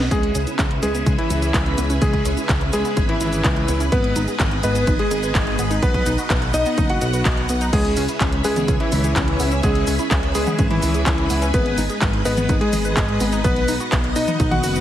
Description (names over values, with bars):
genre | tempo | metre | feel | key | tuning
italo disco | 126 BPM | 4/4 | straight | C# minor | A4 = 440 Hz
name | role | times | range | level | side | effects
string machine, full ensemble | sustained chords | 0.0-14.8 s | G#3 to F#5 | -26 LUFS | equal | ensemble chorus
analog pluck | arpeggios | 0.0-14.8 s | B3 to D#5 | -30 LUFS | right 2 dB | chorus, digital delay
chorused synth bass | bass | 0.0-14.8 s | F#1 to C#2 | -23 LUFS | equal | none
house drum kit | drums | 0.0-14.8 s | cabasa, crash cymbal, handclaps, hi-hat, snare drum, toms | -26 LUFS | equal | overdrive, high-pass filter on hats, high-pass filter on snare, high-pass filter on perc, high-pass filter on cymbals, high-pass filter on toms, high-pass filter on room
clear electric grand piano | melody | 0.1-14.8 s | E3 to F#5 | -23 LUFS | left 1 dB | tape echo
electronic kick drum | drums | 0.1-14.5 s | none | -22 LUFS | equal | overdrive
room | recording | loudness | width
light reverb, digital ambience | heavily compressed radio sound, vinyl crackle | -17 LUFS | side -12 dB against mid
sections
0.1-7.7 A section; 7.7-14.8 B section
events
band accent 0.0; filter sweep on synth arpeggio sound 0.1-7.7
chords
0.1 C#m7; 3.9 G#m; 5.8 B; 7.7 C#m7; 11.5 G#m; 13.4 B